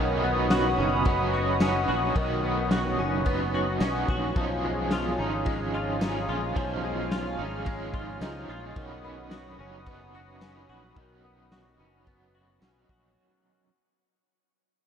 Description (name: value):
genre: dream pop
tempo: 109 BPM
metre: 4/4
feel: straight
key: B lydian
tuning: A4 = 440 Hz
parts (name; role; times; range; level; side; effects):
- crunchy overdriven guitar; accompaniment; 0.0-13.7 s; B2 to G#4; -32 LUFS; right 4 dB; tremolo, analog chorus
- hollow soft pad; sustained chords; 0.0-13.1 s; C#5 to E#6; -32 LUFS; right 1 dB; chorus
- direct-recorded clean electric guitar; arpeggios; 0.0-13.7 s; D#3 to F#4; -31 LUFS; left 3 dB; ensemble chorus, tape echo
- fingered electric bass; bass; 0.0-13.2 s; F#1 to C#2; -33 LUFS; equal; none
- vibraphone with medium hard mallets; texture; 0.2-13.4 s; E#4 to B5; -42 LUFS; left 1 dB; none
- raw garage drum kit; drums; 0.5-13.0 s; kick drum, ride cymbal, snare drum, tambourine; -31 LUFS; equal; none
room: light reverb, small room ambience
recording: none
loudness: -24 LUFS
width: side -8 dB against mid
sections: 0.0-13.2 A section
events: fade-out 0.0-13.2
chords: 0.0 Badd9; 4.4 C#add9; 8.8 Badd9